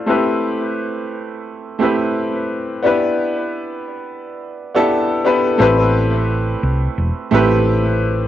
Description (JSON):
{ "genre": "sunset chillout", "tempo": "87 BPM", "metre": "4/4", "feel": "swing 55% on 16ths", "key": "A minor", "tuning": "A4 = 440 Hz", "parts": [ { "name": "bright baby grand piano", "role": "accompaniment", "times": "0.0-8.3 s", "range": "A3 to C5", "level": "-16 LUFS", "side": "moving between left 2 dB and right 4 dB", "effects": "auto-pan, cassette tape, analog delay" }, { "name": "hollow-body short-scale fingered electric bass", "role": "bass", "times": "5.6-8.3 s", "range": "E1 to C2", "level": "-18 LUFS", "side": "equal", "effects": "none" } ], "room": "moderate spring reverb, RT60 1.3 s, small room ambience", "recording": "home recording on cassette, low-pass filter", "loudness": "-15 LUFS", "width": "side -12 dB against mid", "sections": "0.0-5.6 A section; 5.6-8.3 B section", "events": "none", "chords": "0.1 Am9; 2.8 Em7; 5.6 Am9", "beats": "| 0.08 0.77 1.46 2.15 | 2.84 3.53 4.22 4.91 | 5.60 6.29 6.98 7.67" }